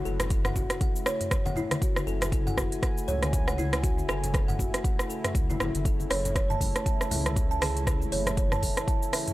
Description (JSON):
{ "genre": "afro house", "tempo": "119 BPM", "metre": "4/4", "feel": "swing 58% on 16ths", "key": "F# minor", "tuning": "A4 = 439 Hz", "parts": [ { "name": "warm analog pad", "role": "sustained chords", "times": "0.0-9.3 s", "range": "C#3 to G#5", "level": "-36 LUFS", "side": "right 1 dB", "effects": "chorus, sidechain pumping" }, { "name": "downlifter", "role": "sound effects", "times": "0.0-1.8 s", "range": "none", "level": "-57 LUFS", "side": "left 1 dB", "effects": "none" }, { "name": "kalimba", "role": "arpeggios", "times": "0.1-9.3 s", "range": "E4 to A5", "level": "-33 LUFS", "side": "equal", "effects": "sidechain pumping, tape echo" }, { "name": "dark detuned saw bass", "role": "bass", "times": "0.1-8.7 s", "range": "F#1 to C#2", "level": "-32 LUFS", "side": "equal", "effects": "sidechain pumping" }, { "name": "afro-pop drum kit", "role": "drums", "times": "0.1-9.3 s", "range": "cabasa, hi-hat, rim click, toms", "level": "-31 LUFS", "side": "right 1 dB", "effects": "none" }, { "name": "congas", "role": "percussion", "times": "0.2-8.7 s", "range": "none", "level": "-37 LUFS", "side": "left 1 dB", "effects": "none" }, { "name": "electronic kick drum", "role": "drums", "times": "0.3-9.0 s", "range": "none", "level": "-28 LUFS", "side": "equal", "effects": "none" } ], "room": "little or no reverb", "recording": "dry, gritty hardware recording", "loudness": "-25 LUFS", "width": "side -17 dB against mid", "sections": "0.0-9.3 A section", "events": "none", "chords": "0.0 F#m9" }